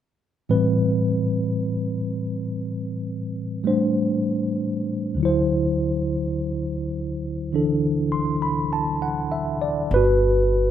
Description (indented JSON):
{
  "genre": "jazz ballad",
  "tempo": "51 BPM",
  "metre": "4/4",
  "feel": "swing 69% on 8ths",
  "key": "unclear",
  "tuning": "A4 = 440 Hz",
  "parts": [
    { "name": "bright tine electric piano", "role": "accompaniment", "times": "0.5-10.7 s", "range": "D2 to C6", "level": "-21 LUFS", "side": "equal", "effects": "medium stereo tremolo" },
    { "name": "upright bass", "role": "bass", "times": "9.9-10.7 s", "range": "G1", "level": "-21 LUFS", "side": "equal", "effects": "none" }
  ],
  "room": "light reverb",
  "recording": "close, detailed microphones",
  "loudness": "-21 LUFS",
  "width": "side -10 dB against mid",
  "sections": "0.5-9.9 A section",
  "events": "none",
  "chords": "0.5 Am7; 5.2 D9; 9.9 Gmaj7"
}